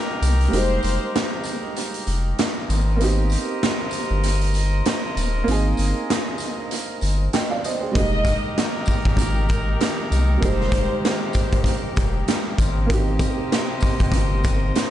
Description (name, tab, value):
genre	hip hop, boom-bap hip-hop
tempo	97 BPM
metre	4/4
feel	swing 57% on 16ths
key	F minor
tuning	A4 = 439 Hz
part	dark upright piano	accompaniment	0.0-14.9 s	G3 to G5	-28 LUFS	right 4 dB	cassette tape, high-pass filter, low-pass filter
part	clear horn section	stabs	0.0-14.9 s	Eb4 to Eb5	-31 LUFS	left 1 dB	high-pass filter, low-pass filter, tape echo
part	warm sub bass	bass	0.2-14.7 s	Eb1 to C2	-21 LUFS	equal	none
part	raw garage drum kit	drums	0.2-14.9 s	hi-hat, kick drum, snare drum	-23 LUFS	equal	tape echo
part	tambourine	percussion	0.2-14.6 s	none	-40 LUFS	left 6 dB	none
part	warm studio violin section	melody	0.5-1.3, 7.9-11.2 s	Bb4 to Eb5	-29 LUFS	left 2 dB	high-pass filter, low-pass filter, tape echo
part	rich studio string section	sustained chords	8.0-14.9 s	C3 to G4	-31 LUFS	left 1 dB	high-pass filter, low-pass filter
room	studio ambience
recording	echo-heavy mix, nothing above 10.3 kHz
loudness	-19 LUFS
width	side -12 dB against mid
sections	0.0-14.9 A section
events	break 0.0-7.9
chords	0.0 Fm11; 2.7 Abmaj9; 7.9 Fm11; 12.6 Abmaj9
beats	| 0.53 1.15 1.76 2.38 | 3.00 3.62 4.24 4.86 | 5.47 6.09 6.71 7.33 | 7.95 8.57 9.19 9.80 | 10.42 11.04 11.66 12.28 | 12.90 13.52 14.13 14.75